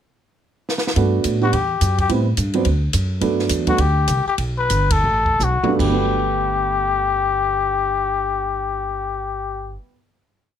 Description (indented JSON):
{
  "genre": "jazz, small-group swing and bop",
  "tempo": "149-214 BPM",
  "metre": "4/4",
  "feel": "swing 61% on 8ths",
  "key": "G major",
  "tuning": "A4 = 440 Hz",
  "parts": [
    { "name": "compact cocktail drum kit", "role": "drums", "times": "0.7-5.9 s", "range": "crash cymbal, hi-hat, kick drum, ride cymbal, snare drum, toms", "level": "-25 LUFS", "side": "equal", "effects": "none" },
    { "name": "dark upright piano", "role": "accompaniment", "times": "1.0-9.9 s", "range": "G2 to G4", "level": "-22 LUFS", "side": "right 5 dB", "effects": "none" },
    { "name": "upright bass", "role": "bass", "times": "1.0-9.8 s", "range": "G1 to A2", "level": "-22 LUFS", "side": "equal", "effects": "none" },
    { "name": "trumpet with cup mute", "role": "melody", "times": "1.4-9.8 s", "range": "F#4 to B4", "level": "-20 LUFS", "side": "left 5 dB", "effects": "none" }
  ],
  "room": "light reverb",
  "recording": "none",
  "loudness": "-17 LUFS",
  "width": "side -9 dB against mid",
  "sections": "0.0-1.0 pickup bar; 1.0-5.8 A section; 5.8-9.0 final chord",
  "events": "drum fill 0.7, 5.4-5.8; slowing down 3.2-5.8; band accent 4.9",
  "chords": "0.0 N.C.; 1.0 Gmaj9; 1.5 Emadd9; 2.1 Am9; 2.7 D; 3.2 Gmaj9; 5.8 Gadd9"
}